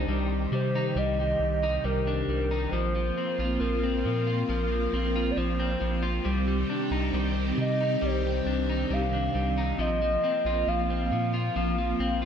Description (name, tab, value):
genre	dream pop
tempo	68 BPM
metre	4/4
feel	straight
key	C minor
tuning	A4 = 438 Hz
part	phased string machine	sustained chords	0.0-12.3 s	C3 to G4	-32 LUFS	right 1 dB	ensemble chorus, phaser
part	electric guitar at the edge of break-up	arpeggios	0.0-12.3 s	F3 to F4	-31 LUFS	left 3 dB	wide subtle chorus, ping-pong delay
part	round analog bass	bass	0.0-12.3 s	Bb1 to C3	-30 LUFS	right 1 dB	none
part	hollow clarinet-like synth lead	melody	0.5-12.3 s	Bb4 to F5	-30 LUFS	equal	chorus, ping-pong delay
room	moderate recital hall reverb, RT60 1.6 s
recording	nothing above 10.5 kHz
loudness	-25 LUFS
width	side -8 dB against mid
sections	0.0-12.3 A section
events	none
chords	0.0 Cmadd9; 2.7 Bbsus2; 6.3 Cmadd9; 9.8 Bbsus2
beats	0.08 0.96 1.85 | 2.73 3.61 4.49 5.38 | 6.26 7.14 8.02 8.91 | 9.79 10.67 11.55